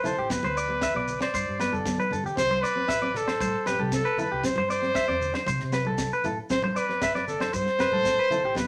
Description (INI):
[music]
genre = highlife guitar band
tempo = 116 BPM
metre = 4/4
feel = straight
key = C major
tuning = A4 = 440 Hz
[part]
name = warm trumpet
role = melody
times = 0.0-8.7 s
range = G4 to D5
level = -29 LUFS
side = equal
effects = none
[part]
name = nylon-string guitar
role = accompaniment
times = 0.0-8.7 s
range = B3 to E4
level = -37 LUFS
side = equal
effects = none
[part]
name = clean electric guitar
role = arpeggios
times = 0.0-8.6 s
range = G4 to E5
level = -31 LUFS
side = equal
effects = none
[part]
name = congas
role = percussion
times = 0.0-8.4 s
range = none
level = -37 LUFS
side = equal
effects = none
[part]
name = maracas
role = percussion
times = 0.1-8.7 s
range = none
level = -44 LUFS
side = equal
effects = none
[part]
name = deep dub fingered electric bass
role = bass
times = 0.2-8.7 s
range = G1 to C3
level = -38 LUFS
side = equal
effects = none
[part]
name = tight funk drum kit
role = drums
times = 0.3-8.7 s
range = kick drum, snare drum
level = -37 LUFS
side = equal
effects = none
[sound]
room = wet studio reverb, RT60 0.6 s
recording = none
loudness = -26 LUFS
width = mono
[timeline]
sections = 0.0-8.7 A section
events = drum fill 1.7-2.4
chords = 0.0 G; 2.4 C; 6.5 G